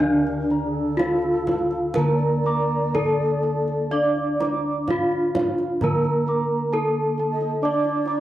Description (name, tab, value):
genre	Javanese gamelan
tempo	62-69 BPM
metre	4/4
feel	straight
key	unclear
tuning	A4 = 441 Hz
part	gamelan-type bronze metallophone	melody	0.0-8.2 s	D4 to D5	-23 LUFS	equal	none
part	breathy mellow bass bansuri	second line	0.0-8.2 s	A4 to Eb5+35c	-33 LUFS	left 1 dB	none
part	gamelan-type bronze metallophone	accompaniment	0.0-8.2 s	D3 to D4	-29 LUFS	equal	none
part	gamelan-type bossed gongs	arpeggios	0.0-8.2 s	F5 to D6	-35 LUFS	left 1 dB	none
part	gamelan-type bronze metallophone	arpeggios	0.0-8.2 s	D5 to D6	-30 LUFS	right 2 dB	none
part	gamelan-type bossed gongs	bass	0.0-8.2 s	D2 to D5	-27 LUFS	equal	none
part	kendang	percussion	0.3-8.2 s	none	-31 LUFS	right 2 dB	none
room	wet spring reverb, RT60 1.2 s, small room ambience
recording	home recording on cassette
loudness	-20 LUFS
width	side -13 dB against mid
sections	0.0-8.2 A section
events	none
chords	none